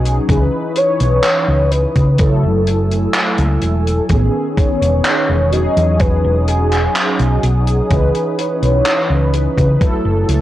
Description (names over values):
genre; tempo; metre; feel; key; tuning
vaporwave; 63 BPM; 4/4; straight; unclear; A4 = 442 Hz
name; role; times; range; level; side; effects
mellow synth brass; accompaniment; 0.0-10.4 s; D#3 to B4; -19 LUFS; equal; phaser, ensemble chorus, cassette tape
warbly tape-like pad; sustained chords; 0.0-10.4 s; A3 to E6; -31 LUFS; equal; chorus, built-in reverb
hollow-body short-scale fingered electric bass; bass; 0.0-10.4 s; E1 to C#3; -15 LUFS; equal; none
damped 70s drum kit; drums; 0.1-10.4 s; handclaps, hi-hat; -20 LUFS; equal; small room ambience
warm velvety synth lead; melody; 0.3-10.4 s; G#4 to D#5; -20 LUFS; equal; chorus, tape echo
electronic kick drum; drums; 0.3-10.0 s; none; -15 LUFS; equal; small room ambience
room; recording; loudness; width
little or no reverb; dry, gritty hardware recording, transformer saturation, cassette tape; -12 LUFS; side -14 dB against mid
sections
0.0-10.4 A section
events
none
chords
0.3 C#m9; 2.2 F#m9; 4.1 Amaj9#11; 5.5 Emaj13; 7.9 C#m9; 9.8 F#m9